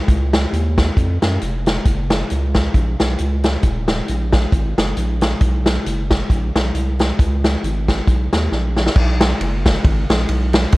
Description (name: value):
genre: uptempo gospel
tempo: 135 BPM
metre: 4/4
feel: swing 56% on 8ths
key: unclear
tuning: A4 = 440 Hz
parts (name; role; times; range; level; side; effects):
- saturated sub bass; bass; 0.1-10.8 s; D#1 to F#2; -19 LUFS; equal; none
- swinging big-band drum kit; drums; 0.1-10.8 s; crash cymbal, hi-hat, kick drum, ride cymbal, snare drum; -17 LUFS; equal; none
room: little or no reverb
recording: worn, warbling old tape, cassette tape, warbly pitch drift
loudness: -15 LUFS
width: side -20 dB against mid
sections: 0.0-9.0 A section; 9.0-10.8 B section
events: drum fill 8.5-9.0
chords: none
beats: | 0.08 0.53 0.97 1.41 | 1.86 2.30 2.75 3.19 | 3.63 4.08 4.52 4.97 | 5.41 5.86 6.30 6.74 | 7.19 7.63 8.07 8.52 | 8.96 9.40 9.84 10.29 | 10.73